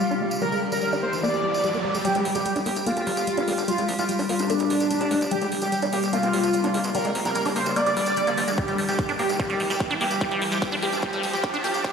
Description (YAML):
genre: psychedelic trance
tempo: 147 BPM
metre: 4/4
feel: straight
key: G phrygian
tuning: A4 = 440 Hz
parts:
  - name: wide unison lead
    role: melody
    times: 0.0-11.9 s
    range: D4 to D5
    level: -25 LUFS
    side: equal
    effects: phaser, sidechain pumping, dub echo
  - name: evolving wavetable pad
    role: sustained chords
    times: 0.0-11.9 s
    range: G3 to C5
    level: -29 LUFS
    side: left 2 dB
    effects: phaser, built-in reverb, sidechain pumping
  - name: liquid acid bass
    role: riff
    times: 0.0-11.9 s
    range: G3 to G4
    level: -29 LUFS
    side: left 1 dB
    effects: phaser, auto-pan, sidechain pumping, dub echo
  - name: tambourine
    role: percussion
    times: 0.0-11.9 s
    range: none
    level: -36 LUFS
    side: left 1 dB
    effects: none
  - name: riser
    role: sound effects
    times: 0.0-11.9 s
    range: none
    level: -33 LUFS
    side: right 1 dB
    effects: none
  - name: electronic hi-hat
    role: drums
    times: 2.0-11.9 s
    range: none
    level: -36 LUFS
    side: right 2 dB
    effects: small room ambience
  - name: fat analog bass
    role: bass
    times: 2.1-11.8 s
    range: F1 to C2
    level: -34 LUFS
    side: right 1 dB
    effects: high-pass filter
  - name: vowel-sweep wobble bass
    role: second line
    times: 2.9-11.8 s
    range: G3 to D4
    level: -36 LUFS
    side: right 3 dB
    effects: none
  - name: electronic kick drum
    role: drums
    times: 8.6-11.9 s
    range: none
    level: -28 LUFS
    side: equal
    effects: small room ambience
room: wet lush hall reverb, RT60 1.7 s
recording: played on a big sound system in a bare room, stone room reverb, high-pass filter, lossy compression artefacts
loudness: -22 LUFS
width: side -6 dB against mid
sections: 0.0-2.0 A section; 2.0-11.9 B section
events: riser 0.0-2.0, 2.0-11.9; build-up 2.0-11.9; filter sweep on acid bass 2.0-11.9; filter sweep 2.0-11.9; drum fill 8.6-11.9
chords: 0.0 G5